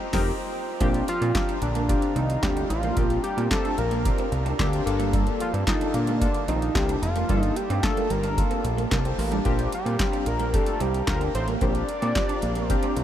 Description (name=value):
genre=early-eighties boogie funk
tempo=111 BPM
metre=4/4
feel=straight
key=Bb major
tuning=A4 = 440 Hz
part: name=glass harmonica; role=sustained chords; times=0.0-13.0 s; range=Bb3 to Bb5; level=-36 LUFS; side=right 1 dB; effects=none
part: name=chorused polysynth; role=accompaniment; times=0.1-12.9 s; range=Bb3 to D5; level=-30 LUFS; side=left 3 dB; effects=none
part: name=fat analog bass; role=bass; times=0.1-13.0 s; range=F1 to Bb2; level=-26 LUFS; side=equal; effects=none
part: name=electro analog drum machine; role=drums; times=0.1-13.0 s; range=crash cymbal, handclaps, hi-hat, kick drum, snare drum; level=-27 LUFS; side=equal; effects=none
part: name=clean electric guitar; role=riff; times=0.8-13.0 s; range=G3 to D4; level=-33 LUFS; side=right 6 dB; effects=ensemble chorus
part: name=fat analog lead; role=melody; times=1.1-13.0 s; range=D4 to D5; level=-28 LUFS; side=equal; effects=chorus
room=moderate huge ambient reverb, RT60 7.8 s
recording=dreamy mix soaked in reverb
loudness=-22 LUFS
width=side -11 dB against mid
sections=0.8-13.0 A section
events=band accent 0.0-0.8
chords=0.0 F9sus4; 0.8 Bb6; 4.9 Gm9; 9.5 Bb6